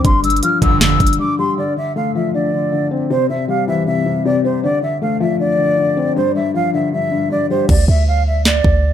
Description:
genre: hip hop, trap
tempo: 157 BPM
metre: 4/4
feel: half-time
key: D minor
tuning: A4 = 439 Hz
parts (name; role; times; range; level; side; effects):
- mellow silver concert flute; melody; 0.0-8.9 s; C5 to F6; -18 LUFS; right 1 dB; digital delay
- felt-muted upright piano; accompaniment; 0.0-7.7 s; G2 to C4; -18 LUFS; left 4 dB; none
- warm 808-style bass; bass; 0.0-1.2, 7.7-8.9 s; G1 to D2; -15 LUFS; right 1 dB; none
- trap drum kit; drums; 0.0-1.2, 7.7-8.7 s; crash cymbal, handclaps, hi-hat, kick drum, snare drum; -16 LUFS; right 1 dB; overdrive
- big bright polysynth; stabs; 0.6-1.0 s; F2 to D3; -20 LUFS; right 6 dB; none
room: light reverb, digital ambience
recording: none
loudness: -14 LUFS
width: side -10 dB against mid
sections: 0.0-1.6 A section; 1.6-7.7 B section; 7.7-8.9 C section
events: break 1.2-1.6; hi-hats muted 7.7-8.9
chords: 0.0 G5; 1.6 Dm7; 3.1 C; 4.6 Dm7; 6.2 G5; 7.7 Dsus2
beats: | 0.05 0.43 0.81 1.19 | 1.57 1.96 2.34 2.72 | 3.10 3.49 3.87 4.25 | 4.63 5.01 5.40 5.78 | 6.16 6.54 6.92 7.31 | 7.69 8.07 8.45 8.84

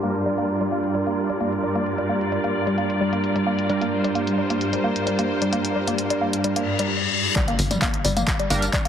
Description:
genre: driving peak-time techno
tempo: 131 BPM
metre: 4/4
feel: straight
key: G minor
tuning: A4 = 439 Hz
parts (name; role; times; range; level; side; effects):
- woody wave-folded pluck; riff; 0.0-8.9 s; G3 to Bb3; -26 LUFS; left 1 dB; chorus, sidechain pumping, ping-pong delay
- sync-sweep polysynth; stabs; 0.0-8.6 s; G3 to Bb4; -25 LUFS; right 2 dB; chorus, sidechain pumping, tape echo
- swarming drone; drone; 0.0-8.9 s; G2 to G3; -29 LUFS; equal; built-in reverb, sidechain pumping
- punchy analog drum machine; drums; 0.0-8.9 s; handclaps, hi-hat, tambourine, toms; -27 LUFS; left 1 dB; none
- clear symphonic string section; texture; 0.0-6.9 s; G3 to D5; -29 LUFS; left 1 dB; sidechain pumping
- reverse cymbal and impact; sound effects; 6.6-8.9 s; none; -26 LUFS; left 4 dB; none
- electronic kick drum; drums; 7.4-8.8 s; none; -25 LUFS; equal; none
- tight sequencer bass; bass; 7.6-8.7 s; G1; -24 LUFS; equal; sidechain pumping
room: moderate plate reverb, RT60 2.2 s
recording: heavily compressed radio sound, low-pass filter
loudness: -20 LUFS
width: side -8 dB against mid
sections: 0.0-7.4 A section; 7.4-8.9 B section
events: filter sweep on synth arpeggio sound 0.0-7.4; filter sweep 0.0-7.4; reverse cymbal 6.6-7.4; drop 7.4-8.9; impact 7.4-8.9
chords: 0.0 Gm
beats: | 0.03 0.49 0.95 1.41 | 1.86 2.32 2.78 3.24 | 3.69 4.15 4.61 5.07 | 5.53 5.99 6.44 6.90 | 7.36 7.82 8.28 8.73

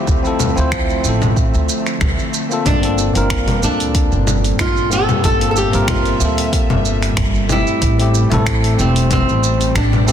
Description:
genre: sunset chillout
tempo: 93 BPM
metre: 4/4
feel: swing 54% on 16ths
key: unclear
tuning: A4 = 439 Hz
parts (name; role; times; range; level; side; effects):
- bell-like tine electric piano; accompaniment; 0.0-10.1 s; A3 to C5; -21 LUFS; moving between left 5 dB and right 2 dB; auto-pan, ping-pong delay
- airy breathy pad; sustained chords; 0.0-10.1 s; Bb2 to E5; -24 LUFS; equal; chorus
- upright bass; bass; 0.1-10.1 s; E1 to D2; -18 LUFS; equal; none
- deep house drum kit; drums; 0.1-10.1 s; congas, finger snaps, hi-hat, shaker; -21 LUFS; left 1 dB; soft clipping on snare
- electronic kick drum; drums; 0.1-9.9 s; none; -20 LUFS; equal; none
- flamenco guitar; melody; 2.7-10.1 s; C4 to A4; -20 LUFS; equal; ping-pong delay
room: light reverb, digital ambience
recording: dense, heavily limited modern master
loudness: -13 LUFS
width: side -9 dB against mid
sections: 0.0-10.1 A section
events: none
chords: 0.0 Dm7; 2.7 Gm11; 7.8 Am7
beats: | 0.08 0.72 1.37 2.01 | 2.66 3.30 3.95 4.59 | 5.24 5.88 6.53 7.17 | 7.82 8.46 9.11 9.75

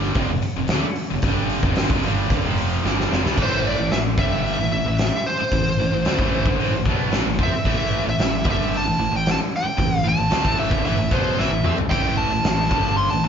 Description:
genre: hard rock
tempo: 112 BPM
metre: 4/4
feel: straight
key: A minor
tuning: A4 = 440 Hz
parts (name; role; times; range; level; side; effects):
- cranked stack guitar; riff; 0.0-13.3 s; F2 to C4; -26 LUFS; right 6 dB; overdrive
- scooped high-gain guitar; riff; 0.0-13.3 s; F2 to C4; -26 LUFS; left 7 dB; distortion
- fuzz fingered electric bass; bass; 0.0-13.3 s; F1 to F2; -27 LUFS; equal; overdrive
- big rock drum kit; drums; 0.0-13.1 s; crash cymbal, hi-hat, kick drum, snare drum, splash cymbal, toms; -22 LUFS; equal; none
- bluesy overdriven lead guitar; melody; 3.4-13.3 s; C5 to C6; -24 LUFS; equal; distortion
room: moderate large studio reverb, RT60 1.3 s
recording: band playing live in one room, nothing above 7.5 kHz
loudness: -18 LUFS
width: side -7 dB against mid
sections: 0.0-3.4 A section; 3.4-13.3 B section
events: drum fill 2.8-3.4, 11.4-11.9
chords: 0.2 F5; 3.4 Am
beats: 0.17 0.71 | 1.24 1.78 2.31 2.85 | 3.38 3.92 4.45 4.99 | 5.52 6.05 6.59 7.12 | 7.66 8.19 8.72 9.26 | 9.79 10.32 10.86 11.39 | 11.92 12.45 12.99

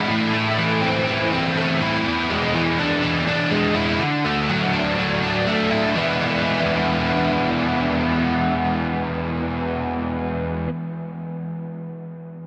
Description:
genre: rock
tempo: 123 BPM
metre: 4/4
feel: straight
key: E mixolydian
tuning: A4 = 440 Hz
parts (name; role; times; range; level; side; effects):
- overdriven electric guitar; solo; 0.0-10.7 s; E2 to E4; -21 LUFS; equal; ensemble chorus
room: moderate huge ambient reverb, RT60 9.3 s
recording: dense, heavily limited modern master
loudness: -21 LUFS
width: mono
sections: 0.0-6.0 A section; 6.0-9.9 B section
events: none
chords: 0.1 Am; 2.0 E7; 4.0 Dadd9; 6.0 E7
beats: | 0.09 0.58 1.06 1.55 | 2.04 2.53 3.02 3.51 | 4.00 4.49 4.97 5.46 | 5.95 6.44 6.93 7.42 | 7.90 8.39 8.88 9.37

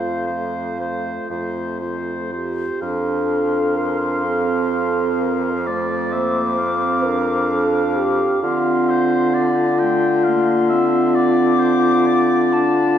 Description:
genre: classical, slow romantic movement for wind quintet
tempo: 38-45 BPM (dotted quarters)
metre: 12/8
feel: rubato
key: F major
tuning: A4 = 437 Hz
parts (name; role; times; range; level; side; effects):
- concert flute; melody; 0.0-13.0 s; F5 to D6; -26 LUFS; left 3 dB; none
- clear oboe; second line; 0.0-13.0 s; C5 to G5; -26 LUFS; left 1 dB; none
- dark clarinet; accompaniment; 0.0-13.0 s; A3 to F4; -24 LUFS; right 6 dB; none
- mellow French horn; accompaniment; 0.0-13.0 s; A3 to C5; -20 LUFS; left 2 dB; none
- clear bassoon; bass; 0.0-13.0 s; F2 to D3; -23 LUFS; right 1 dB; none
room: wet scoring stage reverb, RT60 2.0 s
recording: heard from further back in the room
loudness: -16 LUFS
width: side -9 dB against mid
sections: 0.0-2.8 A section; 2.8-13.0 A section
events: none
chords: 0.0 F; 8.4 Dm7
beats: 1.31 | 2.82 4.25 5.67 7.05 | 8.42 9.79 11.14 12.51

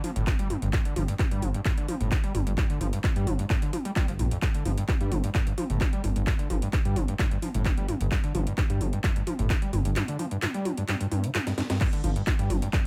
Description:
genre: driving peak-time techno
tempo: 130 BPM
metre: 4/4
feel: straight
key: unclear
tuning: A4 = 440 Hz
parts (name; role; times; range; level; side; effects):
- screaming distorted acid line; riff; 0.0-12.8 s; F2 to G3; -34 LUFS; equal; distortion, lush chorus, sidechain pumping
- techno drum kit; drums; 0.0-12.8 s; crash cymbal, handclaps, hi-hat, snare drum, toms; -34 LUFS; equal; sidechain pumping on hats, sidechain pumping on toms, sidechain pumping on cymbals
- dark detuned saw bass; bass; 0.2-12.6 s; G1 to G2; -31 LUFS; equal; sidechain pumping
- electronic kick drum; drums; 0.3-12.8 s; none; -29 LUFS; equal; none
room: light reverb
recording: none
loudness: -27 LUFS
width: mono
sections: 0.0-12.9 A section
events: filter sweep on acid bass 0.0-12.9; drum fill 11.5-11.8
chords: none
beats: 0.27 | 0.73 1.19 1.66 2.12 | 2.58 3.04 3.50 3.96 | 4.42 4.88 5.35 5.81 | 6.27 6.73 7.19 7.66 | 8.12 8.58 9.04 9.50 | 9.96 10.42 10.88 11.35 | 11.81 12.27 12.73

